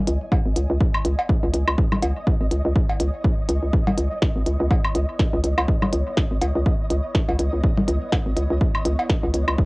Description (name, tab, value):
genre	minimal techno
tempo	123 BPM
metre	4/4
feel	swing 57% on 16ths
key	C# minor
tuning	A4 = 440 Hz
part	ethereal airy pad	texture	0.0-9.7 s	B3 to G#5	-37 LUFS	equal	ensemble chorus, built-in reverb, phaser, sidechain pumping, cassette tape
part	flickering grainy texture	texture	0.0-9.7 s	D#5	-34 LUFS	right 2 dB	built-in reverb, sidechain pumping, cassette tape
part	hollow knocking FM bass	bass	0.1-9.6 s	G#1 to C#2	-21 LUFS	equal	sidechain pumping
part	minimal click drum kit	drums	0.1-9.5 s	hi-hat, snare drum	-28 LUFS	equal	cassette tape
part	electronic kick drum	drums	0.3-9.7 s	none	-21 LUFS	equal	cassette tape
part	cowbell, woodblock and congas	percussion	0.3-9.6 s	none	-24 LUFS	equal	cassette tape, tape echo
room	little or no reverb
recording	home recording on cassette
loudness	-19 LUFS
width	side -26 dB against mid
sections	0.0-9.7 A section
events	fade-in on ambient pad 0.0-9.7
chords	0.0 C#m7